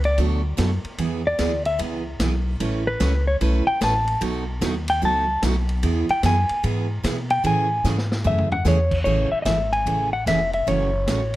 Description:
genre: country, western swing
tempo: 149 BPM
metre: 4/4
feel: swing 65% on 8ths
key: A major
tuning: A4 = 440 Hz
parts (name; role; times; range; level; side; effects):
- upright bass; bass; 0.0-11.4 s; F1 to B2; -23 LUFS; equal; none
- vintage drum kit; drums; 0.0-11.4 s; crash cymbal, hi-hat, kick drum, ride cymbal, snare drum, toms; -31 LUFS; equal; none
- clean lap steel guitar; melody; 0.1-11.4 s; B4 to A5; -22 LUFS; left 1 dB; none
- picked steel-string acoustic guitar; accompaniment; 0.2-11.2 s; B2 to B4; -26 LUFS; right 4 dB; none
room: light reverb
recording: none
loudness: -19 LUFS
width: side -16 dB against mid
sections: 0.0-9.1 A section; 9.1-11.4 B section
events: electric slide guitar solo 0.0-9.1; drum fill 7.8-8.7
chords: 0.0 Bm7; 1.0 E; 2.6 Aadd9; 4.2 B7; 5.8 E; 7.4 Amaj7; 10.7 F#m7

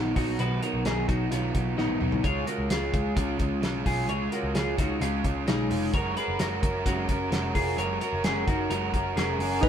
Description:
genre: jangly indie pop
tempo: 130 BPM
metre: 4/4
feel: straight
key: F# major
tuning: A4 = 441 Hz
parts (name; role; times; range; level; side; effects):
- crunchy overdriven guitar; accompaniment; 0.0-9.6 s; B2 to A#4; -30 LUFS; right 4 dB; none
- twelve-string electric guitar; arpeggios; 0.0-9.7 s; G#3 to C#5; -30 LUFS; left 2 dB; none
- vintage muted picked electric bass; bass; 0.0-9.7 s; E#1 to C#2; -31 LUFS; equal; none
- cloth-damped thuddy drum kit; drums; 0.2-9.7 s; crash cymbal, hi-hat, kick drum, snare drum, toms; -30 LUFS; equal; none
- warbly lo-fi synth keys; accompaniment; 9.6-9.7 s; D#4 to B4; -23 LUFS; right 1 dB; chorus
room: moderate stone room reverb, RT60 1.2 s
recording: band playing live in one room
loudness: -24 LUFS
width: side -9 dB against mid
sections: 0.0-9.6 A section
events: drum fill 1.8-2.2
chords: 0.0 B; 2.2 F#add9

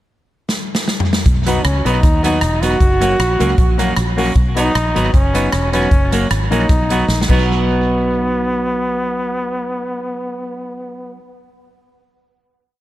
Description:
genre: ska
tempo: 154 BPM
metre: 4/4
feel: swing 54% on 8ths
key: B major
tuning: A4 = 441 Hz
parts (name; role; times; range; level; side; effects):
- swinging big-band drum kit; drums; 0.5-7.4 s; crash cymbal, hi-hat, kick drum, rim click, snare drum, toms; -17 LUFS; equal; tape echo
- fingered electric bass; bass; 1.3-11.2 s; E1 to D#2; -19 LUFS; equal; none
- bright trombone; melody; 1.5-11.2 s; B3 to F#4; -20 LUFS; equal; tape echo
- clean electric guitar; accompaniment; 1.5-11.2 s; F#3 to F#4; -21 LUFS; right 3 dB; tape echo
- warm upright piano; stabs; 1.5-11.2 s; A#3 to B4; -25 LUFS; left 6 dB; none
room: light reverb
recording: none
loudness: -13 LUFS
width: side -14 dB against mid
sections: 0.0-1.3 pickup bar; 1.3-7.5 A section; 7.5-10.6 final hit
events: drum fill 0.5-1.3, 7.1-7.5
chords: 0.0 N.C.; 1.3 B; 2.8 F#; 4.4 B; 5.9 F#; 6.7 B

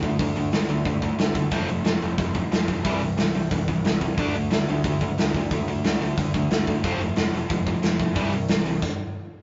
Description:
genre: punk rock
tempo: 181 BPM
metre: 4/4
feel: straight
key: unclear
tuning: A4 = 440 Hz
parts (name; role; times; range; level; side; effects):
- overdriven semi-hollow guitar; riff; 0.0-8.8 s; C3 to D4; -32 LUFS; equal; none
- tight distorted guitar; riff; 0.0-8.8 s; C3 to D4; -32 LUFS; equal; distortion
- fuzz picked electric bass; bass; 0.0-8.8 s; F1 to D2; -30 LUFS; equal; overdrive
- big rock drum kit; drums; 0.0-8.9 s; crash cymbal, hi-hat, kick drum, snare drum; -27 LUFS; equal; none
room: light reverb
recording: rough rehearsal-room recording, nothing above 7.6 kHz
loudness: -24 LUFS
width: mono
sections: 0.0-9.4 A section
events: stop 8.8-9.4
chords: 0.0 D5; 1.5 F; 2.9 C; 4.2 D5; 6.8 F; 8.2 C; 8.8 N.C.

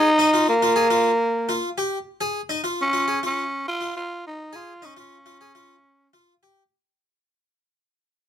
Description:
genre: afrobeat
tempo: 103 BPM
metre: 4/4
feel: straight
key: unclear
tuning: A4 = 439 Hz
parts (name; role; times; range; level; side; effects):
- growling tenor saxophone; melody; 0.0-6.1 s; Bb3 to F4; -20 LUFS; equal; none
- harpsichord; arpeggios; 0.0-6.6 s; Eb4 to Ab4; -26 LUFS; left 2 dB; none
room: light reverb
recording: none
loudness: -20 LUFS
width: side -10 dB against mid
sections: 0.0-6.9 A section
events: fade-out 0.0-6.9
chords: 0.0 Ebsus2; 2.2 Db; 4.5 Eb9sus4 (rootless)

